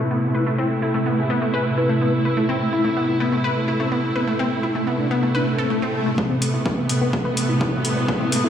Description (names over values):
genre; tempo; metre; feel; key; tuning
melodic techno; 126 BPM; 4/4; straight; A minor; A4 = 439 Hz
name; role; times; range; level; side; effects
expressive synth lead; melody; 0.0-8.5 s; A3 to B4; -27 LUFS; left 1 dB; analog chorus, sidechain pumping, ping-pong delay
rich symphonic string section; sustained chords; 0.0-8.5 s; C3 to E4; -22 LUFS; right 1 dB; sidechain pumping
analog pluck; arpeggios; 0.0-8.5 s; A3 to B4; -25 LUFS; left 2 dB; chorus, sidechain pumping, dub echo
swarming drone; drone; 0.0-8.5 s; A2 to A3; -30 LUFS; equal; built-in reverb, sidechain pumping
swell and riser; sound effects; 5.4-8.5 s; none; -29 LUFS; left 1 dB; none
electronic kick drum; drums; 6.2-8.2 s; none; -24 LUFS; equal; high-pass filter on kick, high-pass filter on room
electronic hi-hat; drums; 6.4-8.4 s; none; -26 LUFS; left 2 dB; sidechain pumping on hats, low-pass filter on hats, low-pass filter on room
room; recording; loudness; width
moderate concert hall reverb, RT60 2.2 s; played on a big sound system in a bare room, stone room reverb, low-pass filter; -18 LUFS; side -9 dB against mid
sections
0.0-6.2 A section; 6.2-8.5 B section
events
filter sweep 0.0-6.2; swell 5.4-6.2; build-up 6.2-8.5; riser 6.2-8.5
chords
0.0 Amadd9